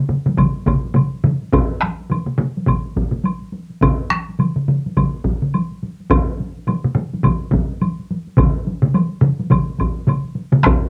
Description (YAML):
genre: japanese traditional, taiko drum ensemble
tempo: 105 BPM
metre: 4/4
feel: swing 60% on 16ths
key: none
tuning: none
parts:
  - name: solo taiko drums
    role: percussion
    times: 0.1-10.6 s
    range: none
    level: -21 LUFS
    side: equal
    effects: none
  - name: taiko ensemble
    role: percussion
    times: 0.1-10.8 s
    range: none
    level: -25 LUFS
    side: equal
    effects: none
  - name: taiko ensemble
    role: percussion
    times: 0.1-10.8 s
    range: none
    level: -21 LUFS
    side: equal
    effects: none
  - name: solo taiko drums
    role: percussion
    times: 0.4-10.8 s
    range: none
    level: -21 LUFS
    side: equal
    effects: none
  - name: woodblock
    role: percussion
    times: 0.4-10.8 s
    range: none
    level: -28 LUFS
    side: equal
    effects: none
room: moderate small room reverb, RT60 0.6 s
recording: home recording on cassette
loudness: -19 LUFS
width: mono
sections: 0.0-10.6 A section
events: none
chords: none